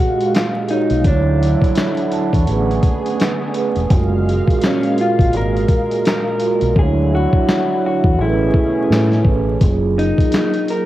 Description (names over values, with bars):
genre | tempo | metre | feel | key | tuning
lo-fi hip hop | 84 BPM | 4/4 | swing 59% on 16ths | unclear | A4 = 439 Hz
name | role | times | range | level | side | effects
electric guitar through a small old amp | melody | 0.0-10.9 s | C#4 to A#4 | -20 LUFS | left 2 dB | low-pass filter, cassette tape, analog delay
vibraphone with soft mallets | accompaniment | 0.0-10.9 s | F#3 to C#6 | -20 LUFS | right 5 dB | cassette tape, low-pass filter
lush unison pad | sustained chords | 0.0-9.6 s | A#2 to E#5 | -26 LUFS | left 1 dB | chorus, low-pass filter, cassette tape
dusty soul sampler-style drum kit | drums | 0.2-10.9 s | handclaps, hi-hat, kick drum, snare drum | -17 LUFS | equal | vintage 12-bit sampler grit, cassette tape
deep dub fingered electric bass | bass | 0.9-10.1 s | E1 to A2 | -18 LUFS | equal | none
room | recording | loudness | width
light reverb, digital ambience | home recording on cassette, vinyl crackle | -14 LUFS | side -14 dB against mid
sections
0.0-10.9 A section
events
hi-hats muted 6.8-9.6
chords
0.0 F#maj9; 1.0 Dmaj9; 2.5 Amaj9; 3.9 F#maj9; 6.8 Dmaj9; 8.2 Amaj9; 9.6 F#maj9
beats
0.33 | 1.04 1.76 2.47 3.19 | 3.90 4.61 5.33 6.04 | 6.76 7.47 8.19 8.90 | 9.61 10.33